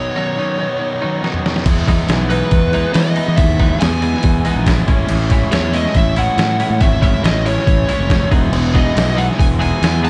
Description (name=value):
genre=indie rock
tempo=140 BPM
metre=4/4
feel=straight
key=E major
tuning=A4 = 440 Hz
part: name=lead guitar through a small cranked amp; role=melody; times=0.0-10.1 s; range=B4 to A5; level=-24 LUFS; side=equal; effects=overdrive, analog delay
part: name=crunchy overdriven guitar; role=riff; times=0.0-10.1 s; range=A2 to E4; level=-25 LUFS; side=equal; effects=none
part: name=twelve-string electric guitar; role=riff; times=0.2-10.1 s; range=D#3 to G#4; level=-26 LUFS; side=equal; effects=lush chorus
part: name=trip hop sampler-style drum kit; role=drums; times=1.2-10.1 s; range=crash cymbal, hi-hat, kick drum, snare drum, toms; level=-19 LUFS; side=equal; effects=none
part: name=fuzz fingered electric bass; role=bass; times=1.7-10.1 s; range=E1 to E3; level=-20 LUFS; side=equal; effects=overdrive
room=digital ambience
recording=dark, warm production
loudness=-15 LUFS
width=mono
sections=0.0-1.7 A section; 1.7-10.1 B section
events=break 0.0-1.7; drum fill 1.2-1.7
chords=0.0 Badd9; 1.7 Emaj7; 4.9 Amaj7; 8.3 Emaj7